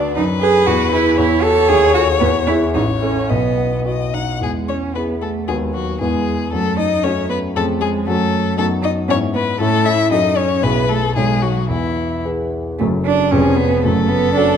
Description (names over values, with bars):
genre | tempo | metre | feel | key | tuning
quick classical-period movement for piano trio | 115 BPM | 2/4 | rubato | E major | A4 = 438 Hz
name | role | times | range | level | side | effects
rich violin | melody | 0.0-14.6 s | E4 to F#5 | -20 LUFS | left 8 dB | none
rich cello | second line | 0.0-14.6 s | E3 to A4 | -18 LUFS | right 5 dB | none
warm grand piano | accompaniment | 0.0-14.6 s | E#1 to C#5 | -18 LUFS | left 2 dB | none
room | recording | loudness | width
moderate recital hall reverb, RT60 1.6 s | dark, warm production | -14 LUFS | side -8 dB against mid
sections
0.0-4.4 A section; 4.4-12.8 B section; 12.8-14.6 C section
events
none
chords
0.2 B7(no3)/F#; 0.7 E; 1.2 F#m7/E; 1.7 D#m7b5; 2.2 E; 2.7 A; 3.3 B; 4.4 E; 5.5 B/D#; 6.0 E; 6.5 F#m; 7.6 C#/E#; 8.1 F#m; 8.6 B/F#; 9.1 E/G#; 9.6 A; 10.1 F#m; 10.6 E/B; 11.2 B13; 11.7 E; 12.8 F#m; 13.3 C#7/E#; 13.8 F#m